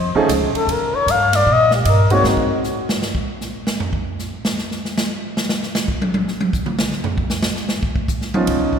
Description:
jazz, small-group swing and bop; 154 BPM; 4/4; swing 64% on 8ths; A4 = 444 Hz
upright bass; bass; 0.0-2.5, 8.5-8.8 s; C#2 to Bb2; -20 LUFS; equal
warm upright piano; accompaniment; 0.2-2.5, 8.3-8.8 s; F3 to G#4; -20 LUFS; right 2 dB
swinging big-band drum kit; drums; 0.3-8.8 s; hi-hat, kick drum, ride cymbal, snare drum, toms; -21 LUFS; right 1 dB
breathy flugelhorn; melody; 0.6-2.2 s; G4 to F5; -17 LUFS; left 3 dB
wet church reverb, RT60 2.6 s; recorded in a church or concert hall; -16 LUFS; side -7 dB against mid
0.0-2.2 A section; 2.2-8.8 A section
flugelhorn solo 0.0-8.8; drum solo 2.2-8.5
0.0 F7alt; 0.7 Eb; 2.2 Ab7; 3.8 N.C.; 7.7 Db9/F

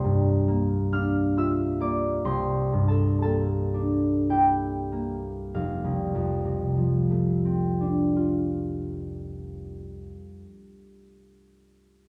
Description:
classical, solo harp piece; 46-72 BPM; 3/4; rubato; F major; A4 = 439 Hz
concert harp; solo; 0.0-10.7 s; F1 to F6; -26 LUFS; equal
moderate recital hall reverb, RT60 1.6 s; dark, warm production; -25 LUFS; mono
0.0-5.5 A section; 5.5-9.1 B section
slowing down 0.0-5.5
0.0 C9sus4; 2.3 C13; 5.5 F69

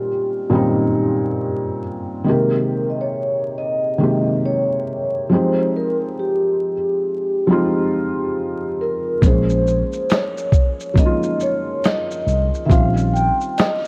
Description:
lo-fi hip hop; 69 BPM; 4/4; swing 63% on 16ths; Bb dorian; A4 = 441 Hz
vibraphone with soft mallets; melody; 0.0-13.9 s; G4 to G5; -24 LUFS; equal; low-pass filter
felt-muted upright piano; accompaniment; 0.0-13.9 s; Bb2 to Ab4; -23 LUFS; equal; low-pass filter
mellow tine electric piano; bass; 9.2-13.3 s; Bb1 to C2; -22 LUFS; equal; transformer saturation
dusty soul sampler-style drum kit; drums; 9.2-13.9 s; hi-hat, kick drum, shaker, snare drum; -19 LUFS; equal
light reverb; worn, warbling old tape, cassette tape, vinyl crackle, warbly pitch drift; -19 LUFS; mono
0.0-13.9 A section
0.0 Eb13/Bb; 2.3 Abmaj9; 5.3 Fm9; 9.2 Bbm9; 12.7 Eb13/Bb

